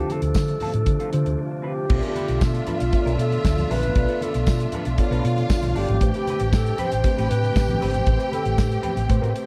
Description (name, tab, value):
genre	disco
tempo	117 BPM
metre	4/4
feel	straight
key	unclear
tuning	A4 = 439 Hz
part	mellow alto flute	melody	0.0-8.8 s	F4 to C5	-30 LUFS	equal	none
part	mellow tine electric piano	accompaniment	0.0-9.5 s	D3 to D5	-32 LUFS	equal	none
part	semi-hollow electric guitar	accompaniment	0.0-9.4 s	C4 to D5	-37 LUFS	equal	wah, subtle chorus
part	bright tonewheel organ	sustained chords	0.0-9.5 s	C3 to G4	-36 LUFS	equal	fast rotary speaker
part	hollow-body short-scale fingered electric bass	bass	0.0-9.3 s	G1 to D3	-26 LUFS	equal	none
part	damped 70s drum kit	drums	0.1-9.5 s	crash cymbal, hi-hat, kick drum, snare drum	-26 LUFS	equal	none
part	congas	percussion	0.1-9.2 s	none	-36 LUFS	equal	none
part	tambourine	percussion	0.3-8.7 s	none	-45 LUFS	equal	none
part	clear studio string section	second line	1.9-9.5 s	F4 to G5	-33 LUFS	equal	none
room	light reverb, studio reverb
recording	dark, warm production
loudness	-22 LUFS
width	mono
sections	0.0-1.9 A section; 1.9-9.5 B section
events	break 1.4-1.9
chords	0.0 Dm7; 1.9 Bm7b5; 6.0 Am9